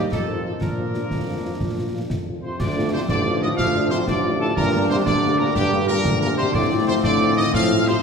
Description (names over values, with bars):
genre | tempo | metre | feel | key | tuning
military-style march for wind band | 121 BPM (dotted quarters) | 6/8 | straight | unclear | A4 = 439 Hz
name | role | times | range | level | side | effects
bright trumpet section | melody | 0.0-8.0 s | G4 to F5 | -27 LUFS | right 1 dB | none
dark French horn section | accompaniment | 0.0-7.9 s | D3 to G4 | -29 LUFS | left 3 dB | none
bright trombone section | sustained chords | 0.0-8.0 s | D3 to Eb4 | -28 LUFS | equal | none
warm tuba | bass | 0.0-7.9 s | A1 to Bb2 | -24 LUFS | left 1 dB | none
concert snare drum, concert bass drum and clash cymbals | drums | 0.1-8.0 s | none | -26 LUFS | equal | none
piccolo | second line | 2.4-8.0 s | G5 to F6 | -26 LUFS | left 1 dB | none
warm euphonium | second line | 2.4-7.9 s | G2 to F3 | -25 LUFS | right 3 dB | none
room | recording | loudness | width
wet scoring stage reverb, RT60 1.6 s | recorded in a church or concert hall | -18 LUFS | side -6 dB against mid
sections
0.0-2.6 A section; 2.6-8.0 B section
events
none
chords
0.1 F7; 0.6 Bb; 2.6 Dm; 4.6 Gm; 6.6 F/A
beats
0.12 | 0.61 1.11 | 1.60 2.10 | 2.59 3.09 | 3.58 4.08 | 4.57 5.07 | 5.56 6.06 | 6.55 7.05 | 7.54